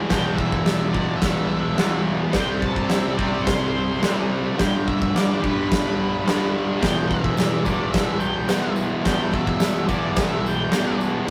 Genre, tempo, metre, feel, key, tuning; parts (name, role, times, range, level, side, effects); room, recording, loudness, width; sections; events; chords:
garage rock duo or trio; 107 BPM; 4/4; straight; E minor; A4 = 440 Hz
fuzz guitar; riff; 0.0-11.3 s; E2 to C4; -25 LUFS; equal; distortion
octave-fuzz lead guitar; melody; 0.1-11.0 s; B4 to A5; -32 LUFS; equal; distortion
oversized low-tuned drum kit; drums; 0.1-10.8 s; crash cymbal, kick drum, snare drum; -25 LUFS; equal
tambourine; percussion; 6.8-11.1 s; -45 LUFS; equal
light reverb; rough rehearsal-room recording, tube saturation; -22 LUFS; mono
0.0-11.3 A section
0.0 E5; 2.3 C5; 4.6 G; 6.8 Em